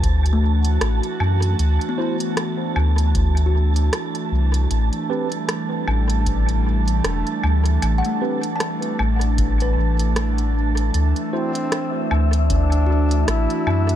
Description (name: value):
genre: ambient dub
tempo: 77 BPM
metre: 4/4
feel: swing 57% on 16ths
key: unclear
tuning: A4 = 440 Hz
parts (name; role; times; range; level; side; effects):
- airy breathy pad; sustained chords; 0.0-14.0 s; E3 to F#4; -26 LUFS; right 1 dB; chorus
- soft dub sub bass; bass; 0.0-14.0 s; E1 to F#2; -18 LUFS; equal; tube saturation
- electronic kick drum; drums; 0.0-12.7 s; none; -24 LUFS; equal; small room ambience
- organic electronic drum kit; drums; 0.0-14.0 s; hi-hat, rim click, woodblock; -28 LUFS; equal; small room ambience, dub echo
- wind-like tuned noise texture; texture; 0.0-14.0 s; E5 to A5; -30 LUFS; right 4 dB; built-in reverb
- kalimba; arpeggios; 0.3-14.0 s; A3 to A5; -30 LUFS; left 5 dB; dub echo
- mellow tine electric piano; stabs; 2.0-11.5 s; C4 to C5; -31 LUFS; right 3 dB; fast stereo tremolo, dub echo
- mellow trombone; melody; 11.3-14.0 s; C4 to E4; -25 LUFS; equal; dub echo
room: digital ambience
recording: none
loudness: -18 LUFS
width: side -11 dB against mid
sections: 0.0-14.0 A section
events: none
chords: 0.0 Dadd9; 4.7 A7sus2; 10.9 D9